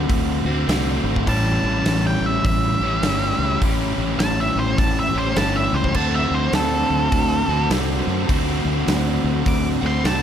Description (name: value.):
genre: blues rock power trio and southern rock.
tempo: 102 BPM.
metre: 4/4.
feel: swing 62% on 8ths.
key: unclear.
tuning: A4 = 440 Hz.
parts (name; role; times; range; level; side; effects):
overdriven electric guitar; riff; 0.0-10.2 s; A2 to G4; -22 LUFS; equal; none.
growling fingered electric bass; bass; 0.0-10.2 s; G1 to F#2; -24 LUFS; equal; overdrive.
big rock drum kit; drums; 0.1-10.2 s; crash cymbal, hi-hat, kick drum, snare drum; -24 LUFS; equal; none.
octave-fuzz lead guitar; melody; 1.3-10.2 s; A4 to D6; -24 LUFS; right 1 dB; distortion.
room: light reverb, small room ambience.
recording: none.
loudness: -17 LUFS.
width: side -9 dB against mid.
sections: 0.0-10.2 A section.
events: lead electric guitar solo 0.0-10.2.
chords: 0.0 D7; 1.3 A7; 6.0 D7.